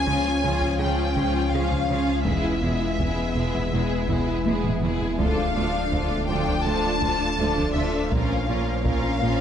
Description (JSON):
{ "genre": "cinematic, hybrid orchestral and electronic film score", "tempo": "82 BPM", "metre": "4/4", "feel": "straight", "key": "D harmonic minor", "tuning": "A4 = 441 Hz", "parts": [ { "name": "warm symphonic violin section", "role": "melody", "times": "0.0-9.4 s", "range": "E5 to A5", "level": "-28 LUFS", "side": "left 3 dB", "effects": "none" }, { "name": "rich symphonic violin section", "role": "second line", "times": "0.0-9.4 s", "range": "E4 to Bb4", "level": "-31 LUFS", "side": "left 1 dB", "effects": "none" }, { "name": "warm symphonic viola section", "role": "accompaniment", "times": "0.0-9.4 s", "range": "E#3 to D4", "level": "-31 LUFS", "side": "right 1 dB", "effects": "none" }, { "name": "dark French horn section", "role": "sustained chords", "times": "0.0-9.4 s", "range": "E#3 to D4", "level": "-31 LUFS", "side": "left 3 dB", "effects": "none" }, { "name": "ethereal airy pad", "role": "sustained chords", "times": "0.0-9.4 s", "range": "G#3 to E#5", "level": "-31 LUFS", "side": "equal", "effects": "ensemble chorus, built-in reverb" }, { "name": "sub bass with octave", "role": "bass", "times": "0.0-9.4 s", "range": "D1 to C#2", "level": "-30 LUFS", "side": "equal", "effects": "none" }, { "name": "harp-like synth pluck", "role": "arpeggios", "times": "0.1-9.3 s", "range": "C#3 to Bb4", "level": "-32 LUFS", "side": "left 1 dB", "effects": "chorus, tape echo" }, { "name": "rich studio cello section", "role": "bass", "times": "0.1-9.3 s", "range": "D2 to C#3", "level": "-32 LUFS", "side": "right 3 dB", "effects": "none" }, { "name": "warm symphonic double bass section", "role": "bass", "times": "0.1-9.3 s", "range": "E1 to D2", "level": "-32 LUFS", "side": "right 3 dB", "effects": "none" }, { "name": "taiko ensemble", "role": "drums", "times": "0.1-9.4 s", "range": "none", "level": "-31 LUFS", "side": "equal", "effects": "none" } ], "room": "moderate scoring stage reverb, RT60 1.8 s", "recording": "nothing above 10.9 kHz", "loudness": "-21 LUFS", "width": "side -9 dB against mid", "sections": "0.0-9.4 A section", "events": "drum fill 4.5-5.2", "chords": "0.0 C#; 2.3 E; 5.2 Dm; 8.1 Bbm" }